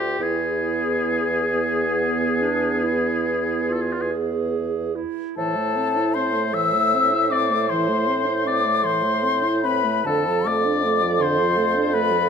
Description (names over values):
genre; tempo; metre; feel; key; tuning
classical, slow romantic movement for wind quintet; 44-56 BPM (dotted quarters); 12/8; rubato; A minor; A4 = 441 Hz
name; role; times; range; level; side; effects
mellow silver concert flute; melody; 0.0-12.3 s; G4 to E6; -23 LUFS; left 6 dB; none
warm oboe; second line; 0.0-12.3 s; F4 to E5; -26 LUFS; left 2 dB; none
mellow clarinet; accompaniment; 0.0-12.3 s; B3 to C5; -28 LUFS; right 11 dB; none
mellow bassoon; bass; 0.0-12.3 s; D2 to A2; -25 LUFS; right 3 dB; none
mellow French horn; accompaniment; 0.2-12.3 s; D3 to E4; -28 LUFS; equal; none
room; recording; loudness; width
moderate recital hall reverb, RT60 1.7 s; none; -19 LUFS; side -7 dB against mid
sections
0.0-5.4 A section; 5.4-12.3 B section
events
none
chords
0.2 E; 5.4 Am; 10.1 Dm/F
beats
| 0.20 1.54 2.85 4.12 | 5.37 6.54 7.70 8.84 | 10.05 11.21